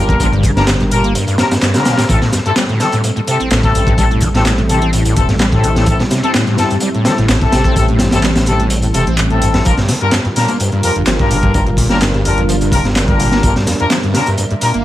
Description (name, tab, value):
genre	breakbeat, breaks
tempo	127 BPM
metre	4/4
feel	straight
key	A phrygian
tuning	A4 = 440 Hz
part	dark analog pad	sustained chords	0.0-14.8 s	G3 to E5	-21 LUFS	right 1 dB	chorus, vintage 12-bit sampler grit, sidechain pumping
part	screaming distorted acid line	riff	0.0-14.8 s	F2 to C4	-17 LUFS	equal	distortion, ensemble chorus
part	mellow brass ensemble	stabs	0.0-14.7 s	C4 to Bb4	-19 LUFS	left 3 dB	dub echo
part	dark detuned saw bass	bass	0.0-14.8 s	D1 to A1	-17 LUFS	equal	none
part	crunchy breakbeat drum kit	drums	0.1-14.7 s	hi-hat, kick drum, snare drum	-16 LUFS	equal	none
part	punchy analog drum machine	drums	0.1-14.8 s	handclaps, hi-hat	-23 LUFS	equal	none
room	small room ambience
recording	vinyl crackle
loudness	-11 LUFS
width	side -14 dB against mid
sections	0.0-14.8 A section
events	none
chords	0.0 Gm7; 2.1 Am7; 9.7 Gm7